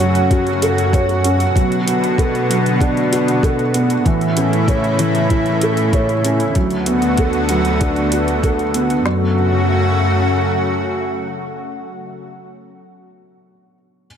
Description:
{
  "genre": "piano and strings electronica",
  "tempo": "96 BPM",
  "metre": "4/4",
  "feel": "straight",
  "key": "F# minor",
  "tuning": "A4 = 441 Hz",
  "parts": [
    { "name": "lush unison pad", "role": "sustained chords", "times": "0.0-12.3 s", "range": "C#3 to F#4", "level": "-19 LUFS", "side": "equal", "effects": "chorus" },
    { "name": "felt-muted upright piano", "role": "riff", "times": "0.0-14.1 s", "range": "E3 to C#5", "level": "-19 LUFS", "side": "right 2 dB", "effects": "ping-pong delay" },
    { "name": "warm studio cello section", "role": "bass", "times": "0.0-10.9 s", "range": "D2 to B2", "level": "-20 LUFS", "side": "left 1 dB", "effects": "sidechain pumping" },
    { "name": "electronic hi-hat", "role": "drums", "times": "0.0-9.0 s", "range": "none", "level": "-27 LUFS", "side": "equal", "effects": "none" },
    { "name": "organic electronic drum kit", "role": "drums", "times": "0.3-9.2 s", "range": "kick drum, snare drum", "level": "-17 LUFS", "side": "equal", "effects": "none" }
  ],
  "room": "moderate lush hall reverb, RT60 2.8 s",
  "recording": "none",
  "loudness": "-14 LUFS",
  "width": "side -8 dB against mid",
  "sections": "0.0-9.1 A section; 9.1-11.6 B section",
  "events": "none",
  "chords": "0.0 F#m; 1.6 Bm7; 4.1 A; 6.6 D6; 9.1 F#m",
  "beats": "0.30 0.93 | 1.55 2.18 2.80 3.43 | 4.05 4.68 5.30 5.93 | 6.55 7.18 7.80 8.43 | 9.05 9.68 10.30 10.93"
}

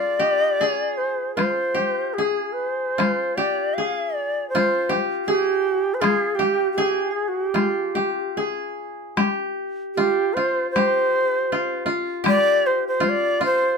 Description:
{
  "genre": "japanese traditional, Japanese chamber music",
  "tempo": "72-82 BPM",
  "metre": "2/4",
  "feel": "rubato",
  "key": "unclear",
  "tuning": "A4 = 437 Hz",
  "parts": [
    { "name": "bright reedy shakuhachi", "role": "melody", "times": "0.0-13.8 s", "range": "G4 to F5", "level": "-21 LUFS", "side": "right 1 dB", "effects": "none" },
    { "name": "koto", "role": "second line", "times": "0.0-13.8 s", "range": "F4 to Ab4", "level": "-24 LUFS", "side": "left 2 dB", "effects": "none" },
    { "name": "solo taiko drums", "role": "percussion", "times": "1.4-13.2 s", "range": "none", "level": "-24 LUFS", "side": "left 4 dB", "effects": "none" }
  ],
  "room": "light reverb",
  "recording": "minimal, uncompressed stereo recording",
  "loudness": "-19 LUFS",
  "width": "side -5 dB against mid",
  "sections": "0.0-9.2 A section; 9.2-13.8 B section",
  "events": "none",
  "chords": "none",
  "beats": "0.58 | 1.37 2.16 | 2.98 3.77 | 4.54 5.29 | 6.03 6.78 | 7.54 8.34 | 9.16 9.97 | 10.75 11.51 | 12.27 13.03"
}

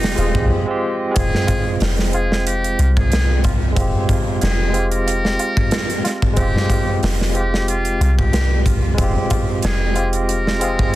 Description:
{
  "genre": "trip hop",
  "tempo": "92 BPM",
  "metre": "4/4",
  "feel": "swing 54% on 16ths",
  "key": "F minor",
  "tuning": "A4 = 435 Hz",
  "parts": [
    { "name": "trumpet with metal mute", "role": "melody", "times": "0.0-11.0 s", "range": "Eb4 to Bb4", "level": "-26 LUFS", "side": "equal", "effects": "tape echo" },
    { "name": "barky tine electric piano", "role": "accompaniment", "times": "0.0-11.0 s", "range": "Ab3 to G5", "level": "-22 LUFS", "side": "equal", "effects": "medium stereo tremolo, low-pass filter" },
    { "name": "soft 808-style bass", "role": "bass", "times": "0.0-11.0 s", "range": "Eb1 to C2", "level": "-19 LUFS", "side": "equal", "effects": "tube saturation" },
    { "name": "gated 80s drum kit", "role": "drums", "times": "0.0-10.9 s", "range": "hi-hat, kick drum, snare drum", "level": "-19 LUFS", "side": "equal", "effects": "none" },
    { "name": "tabla", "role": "percussion", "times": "0.0-10.9 s", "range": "none", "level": "-29 LUFS", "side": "left 1 dB", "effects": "none" }
  ],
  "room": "studio reverb",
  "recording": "dense, heavily limited modern master",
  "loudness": "-15 LUFS",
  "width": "side -16 dB against mid",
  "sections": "0.0-1.2 A section; 1.2-11.0 A section",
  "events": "filter sweep on tine electric piano 1.2-11.0",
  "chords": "0.0 Fmadd9",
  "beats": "0.51 | 1.16 1.81 2.46 3.12 | 3.77 4.42 5.07 5.72 | 6.38 7.03 7.68 8.33 | 8.99 9.64 10.29 10.94"
}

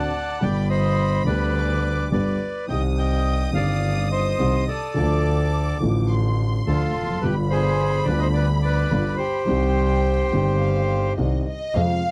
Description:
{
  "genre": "tango",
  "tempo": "106 BPM",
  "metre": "4/4",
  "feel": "rubato",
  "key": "C harmonic minor",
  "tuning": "A4 = 440 Hz",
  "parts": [
    { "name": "bandoneon", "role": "melody", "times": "0.0-11.1 s", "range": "F4 to G5", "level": "-27 LUFS", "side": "equal", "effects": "none" },
    { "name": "warm studio violin section", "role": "second line", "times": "0.0-12.1 s", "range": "Eb5 to Eb6", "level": "-35 LUFS", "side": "equal", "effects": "none" },
    { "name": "dark grand piano", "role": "accompaniment", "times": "0.0-12.0 s", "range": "G1 to G4", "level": "-27 LUFS", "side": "equal", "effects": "none" },
    { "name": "clear double bass", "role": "bass", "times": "0.0-12.0 s", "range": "F1 to F2", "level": "-25 LUFS", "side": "equal", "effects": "none" }
  ],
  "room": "small room reverb",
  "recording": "dry, close 1970s-style studio recording",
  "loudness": "-22 LUFS",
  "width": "mono",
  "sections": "0.0-11.8 A section",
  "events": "none",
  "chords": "0.4 G; 2.7 Cm; 5.0 Dm; 7.2 G7; 9.5 Cm",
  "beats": "| 0.42 0.98 1.55 2.12 | 2.69 3.26 3.83 4.40 | 4.96 5.53 6.10 6.66 | 7.22 7.79 8.35 8.91 | 9.47 10.03 10.60 11.18 | 11.75"
}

